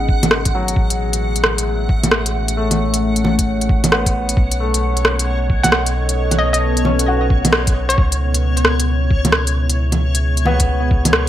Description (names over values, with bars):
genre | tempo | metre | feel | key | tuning
future garage | 133 BPM | 4/4 | swing 64% on 16ths | C# minor | A4 = 440 Hz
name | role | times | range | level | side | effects
bright upright piano | accompaniment | 0.0-11.3 s | C#3 to F#4 | -26 LUFS | left 2 dB | sidechain pumping, digital delay
deep dark ambient pad | sustained chords | 0.0-11.3 s | A3 to F#5 | -23 LUFS | equal | chorus, built-in reverb, sidechain pumping
soft dub sub bass | bass | 0.0-11.3 s | G#1 to C#2 | -19 LUFS | equal | sidechain pumping
backwards swelling texture | texture | 0.0-11.3 s | C#5 to F#5 | -28 LUFS | equal | built-in reverb, analog chorus
electronic kick drum | drums | 0.1-11.0 s | none | -17 LUFS | equal | none
organic electronic drum kit | drums | 0.2-11.2 s | bongos, hi-hat, rim click | -17 LUFS | equal | none
hollow square pluck | melody | 5.6-8.0 s | C#5 to F#5 | -21 LUFS | equal | chorus, digital delay
room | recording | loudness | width
moderate plate reverb, RT60 1.2 s | bright 1980s-style digital production, vinyl crackle | -14 LUFS | side -12 dB against mid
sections
0.0-11.3 A section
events
filter sweep on upright piano 0.0-11.3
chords
0.0 G#m7; 0.8 Amaj7; 4.4 B9; 8.0 C#m7